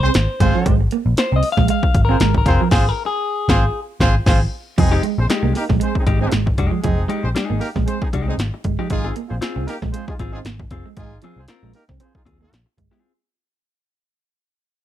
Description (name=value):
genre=funk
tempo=116 BPM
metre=4/4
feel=swing 56% on 16ths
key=F minor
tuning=A4 = 441 Hz
part: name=warm horn section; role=second line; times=0.0-12.5 s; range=Ab3 to C5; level=-24 LUFS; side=right 1 dB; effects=tube saturation
part: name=electric guitar at the edge of break-up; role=accompaniment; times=0.0-13.1 s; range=Ab3 to F5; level=-24 LUFS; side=left 5 dB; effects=none
part: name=electric guitar at the edge of break-up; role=riff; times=0.0-13.0 s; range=F3 to C4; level=-24 LUFS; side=right 12 dB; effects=none
part: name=vintage muted picked electric bass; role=bass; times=0.0-12.9 s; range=F1 to Eb2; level=-19 LUFS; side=equal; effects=none
part: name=punchy analog drum machine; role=drums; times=0.1-13.0 s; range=crash cymbal, hi-hat, kick drum, snare drum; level=-20 LUFS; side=equal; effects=none
room=light reverb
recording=dark, warm production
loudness=-16 LUFS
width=side -12 dB against mid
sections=0.0-4.8 A section; 4.8-13.0 B section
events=clean electric guitar solo 0.0-4.8; band accent 2.7-4.8; fade-out 4.8-13.0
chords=0.0 Fmadd9; 0.7 Ab6; 4.8 Fm9